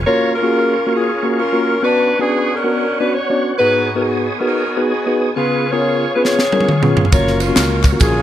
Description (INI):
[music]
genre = uptempo gospel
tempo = 136 BPM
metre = 4/4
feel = swing 64% on 8ths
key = F# major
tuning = A4 = 440 Hz
[part]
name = tonewheel organ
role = sustained chords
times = 0.0-8.2 s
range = B3 to D#6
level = -25 LUFS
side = right 3 dB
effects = fast rotary speaker, chorus vibrato
[part]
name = modern bright fingered electric bass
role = bass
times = 0.0, 7.1-8.2 s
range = F#1 to C#2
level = -19 LUFS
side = equal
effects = none
[part]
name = mellow saxophone section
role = melody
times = 0.1-8.2 s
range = B3 to C#5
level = -17 LUFS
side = left 1 dB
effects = none
[part]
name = mellow tine electric piano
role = accompaniment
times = 0.1-8.1 s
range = G#2 to D5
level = -18 LUFS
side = left 1 dB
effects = fast stereo tremolo
[part]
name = crisp fusion drum kit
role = drums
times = 6.2-8.1 s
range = kick drum, ride cymbal, snare drum, toms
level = -15 LUFS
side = equal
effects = none
[part]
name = tambourine and handclaps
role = percussion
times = 7.1-8.1 s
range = none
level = -25 LUFS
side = left 3 dB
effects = none
[sound]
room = light reverb, studio reverb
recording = none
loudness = -13 LUFS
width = side -11 dB against mid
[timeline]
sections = 0.1-8.2 A section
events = drum fill 6.2-7.1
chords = 0.1 F#maj7; 1.8 Bmadd9; 3.6 G#m7; 5.4 C#7; 7.1 F#maj7